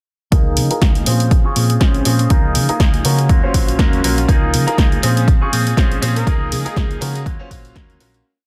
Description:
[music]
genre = filtered disco house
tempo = 121 BPM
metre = 4/4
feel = swing 56% on 16ths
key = Db major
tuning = A4 = 439 Hz
[part]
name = bright grand piano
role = accompaniment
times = 0.3-8.2 s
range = Gb3 to Db6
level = -25 LUFS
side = equal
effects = phaser, vintage 12-bit sampler grit, sidechain pumping, low-pass filter
[part]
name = electric guitar with an envelope filter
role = riff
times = 0.3-8.3 s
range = F3 to Ab4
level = -26 LUFS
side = equal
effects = sidechain pumping, low-pass filter
[part]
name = hollow-body short-scale fingered electric bass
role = bass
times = 0.3-8.2 s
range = Bb1 to Db3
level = -21 LUFS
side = equal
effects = tube saturation, sidechain pumping, low-pass filter
[part]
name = electronic kick drum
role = drums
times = 0.3-7.9 s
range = none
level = -16 LUFS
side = equal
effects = overdrive, studio reverb
[part]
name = punchy analog drum machine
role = drums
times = 0.3-8.2 s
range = hi-hat, snare drum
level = -25 LUFS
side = equal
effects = overdrive, sidechain pumping on hats, studio reverb
[part]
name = tambourine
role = percussion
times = 0.3-8.2 s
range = none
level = -42 LUFS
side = equal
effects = none
[part]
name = analog synth brass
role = melody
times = 6.2-7.2 s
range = Ab4 to Bb4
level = -32 LUFS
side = equal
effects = chorus, sidechain pumping, low-pass filter
[sound]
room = light reverb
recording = dense, heavily limited modern master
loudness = -15 LUFS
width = mono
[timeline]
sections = 0.3-8.3 groove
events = filter sweep 0.3-8.3; fade-out 5.6-8.3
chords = 0.3 Db69; 1.1 Bbm9; 2.3 Db69; 3.3 Ebm9; 4.3 Db69; 5.0 Bbm9; 6.3 Db69; 7.3 Ebm9

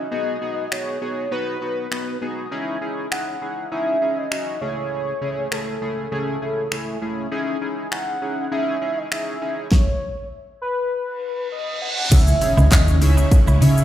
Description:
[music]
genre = dance-pop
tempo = 100 BPM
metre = 4/4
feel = straight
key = C# minor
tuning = A4 = 441 Hz
[part]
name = warm velvety synth lead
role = melody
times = 0.0-13.8 s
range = A4 to F#5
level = -26 LUFS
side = equal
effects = chorus, digital delay
[part]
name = chorused polysynth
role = accompaniment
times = 0.0-13.8 s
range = C#3 to E5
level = -26 LUFS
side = left 1 dB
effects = sidechain pumping
[part]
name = pop drum kit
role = drums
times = 0.7-13.8 s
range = crash cymbal, finger snaps, handclaps, hi-hat, kick drum, shaker, snare drum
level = -18 LUFS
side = equal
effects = none
[part]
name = reverse cymbal and impact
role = sound effects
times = 11.4-13.8 s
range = none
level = -27 LUFS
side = right 1 dB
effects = none
[part]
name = phased string machine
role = sustained chords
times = 12.3-13.8 s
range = C#3 to E4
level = -27 LUFS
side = right 2 dB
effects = ensemble chorus, phaser, sidechain pumping
[part]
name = direct-recorded clean electric guitar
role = riff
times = 12.1-13.7 s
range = C#4 to E4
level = -30 LUFS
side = right 5 dB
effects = ensemble chorus
[part]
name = vintage muted fingered electric bass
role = bass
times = 12.1-13.8 s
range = C#2 to C#3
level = -15 LUFS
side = equal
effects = sidechain pumping
[part]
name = group handclap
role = percussion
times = 12.7-12.9 s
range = none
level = barely audible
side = none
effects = none
[sound]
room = light reverb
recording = played on a big sound system in a bare room, stone room reverb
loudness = -19 LUFS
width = side -12 dB against mid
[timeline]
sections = 0.0-12.1 A section; 12.1-13.8 B section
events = kick muted 0.1-2.5; reverse cymbal 11.4-12.1; impact 12.1-13.8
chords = 0.1 G#m7; 2.5 C#madd9; 4.6 Amaj7/C#; 7.3 C#madd9; 9.7 N.C.; 12.1 C#madd9

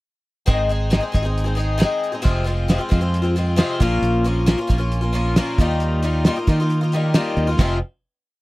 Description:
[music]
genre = folk rock and heartland rock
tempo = 135 BPM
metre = 4/4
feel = straight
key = F minor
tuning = A4 = 440 Hz
[part]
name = picked twelve-string acoustic guitar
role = accompaniment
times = 0.5-7.8 s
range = F2 to Ab4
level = -22 LUFS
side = left 2 dB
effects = none
[part]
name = fingered electric bass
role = bass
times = 0.5-7.8 s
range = F1 to Eb3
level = -20 LUFS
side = right 1 dB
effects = none
[part]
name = cloth-damped thuddy drum kit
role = drums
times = 0.5-7.7 s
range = hi-hat, kick drum, ride cymbal, snare drum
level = -17 LUFS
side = right 1 dB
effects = none
[sound]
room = little or no reverb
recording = dry, close 1970s-style studio recording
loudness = -17 LUFS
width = side -19 dB against mid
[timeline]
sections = 0.5-7.6 verse; 7.6-8.4 final chord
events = none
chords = 0.5 Ab; 2.2 Fm; 3.8 Bbm; 5.6 Ebadd9; 7.6 Fm

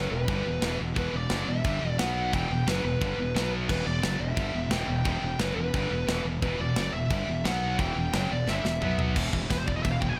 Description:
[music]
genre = heavy metal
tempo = 176 BPM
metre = 4/4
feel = straight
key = E minor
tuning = A4 = 438 Hz
[part]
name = high-gain lead guitar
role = melody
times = 0.0-10.2 s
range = B4 to G#5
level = -35 LUFS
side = equal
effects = distortion, digital delay
[part]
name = heavy high-gain guitar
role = riff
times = 0.0-10.2 s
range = E2 to B3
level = -39 LUFS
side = equal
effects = none
[part]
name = scooped high-gain guitar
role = riff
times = 0.0-10.2 s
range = E2 to B3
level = -37 LUFS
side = equal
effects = distortion
[part]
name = scooped high-gain guitar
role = riff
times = 0.0-10.2 s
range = E2 to B3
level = -36 LUFS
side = equal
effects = distortion
[part]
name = fuzz fingered electric bass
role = bass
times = 0.0-10.2 s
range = E1 to B1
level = -34 LUFS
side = equal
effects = overdrive
[part]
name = tight metal drum kit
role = drums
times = 0.3-10.1 s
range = china cymbal, crash cymbal, kick drum, snare drum, toms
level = -34 LUFS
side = equal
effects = none
[sound]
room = light reverb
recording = none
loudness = -28 LUFS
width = mono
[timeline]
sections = 0.0-9.2 A section; 9.2-10.2 B section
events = drum fill 8.5-9.2; lead electric guitar solo 9.2-10.2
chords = 0.0 Em; 2.0 B5; 2.3 Em; 3.4 B5; 3.7 Em; 7.5 B5; 7.8 Em; 8.8 B5; 9.2 E5

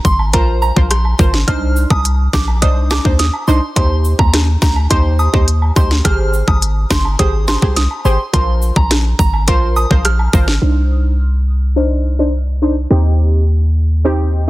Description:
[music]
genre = dancehall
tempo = 105 BPM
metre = 4/4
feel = straight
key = C minor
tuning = A4 = 441 Hz
[part]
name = soft synth bell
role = melody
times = 0.0-10.5 s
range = Bb5 to F6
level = -21 LUFS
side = right 2 dB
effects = chorus
[part]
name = warm 808-style bass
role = bass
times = 0.0-14.5 s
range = G1 to Eb2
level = -14 LUFS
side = equal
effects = none
[part]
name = island pop drum kit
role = drums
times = 0.0-10.6 s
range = hi-hat, kick drum, rim click, snare drum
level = -14 LUFS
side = equal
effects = overdrive
[part]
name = cabasa and woodblock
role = percussion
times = 0.1-10.5 s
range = none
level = -28 LUFS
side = equal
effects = none
[part]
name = synth brass stab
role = accompaniment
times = 0.3-14.5 s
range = C4 to C5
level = -19 LUFS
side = equal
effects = chorus, sidechain pumping, low-pass filter
[sound]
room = little or no reverb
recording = dense, heavily limited modern master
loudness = -11 LUFS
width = side -18 dB against mid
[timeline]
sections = 0.0-10.6 A section; 10.6-14.5 B section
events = none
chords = 0.0 Bbsus2; 1.5 Cmadd9; 3.8 Eb6; 6.0 Abmaj7; 8.3 Bbsus2; 10.6 Cmadd9; 12.9 Eb6

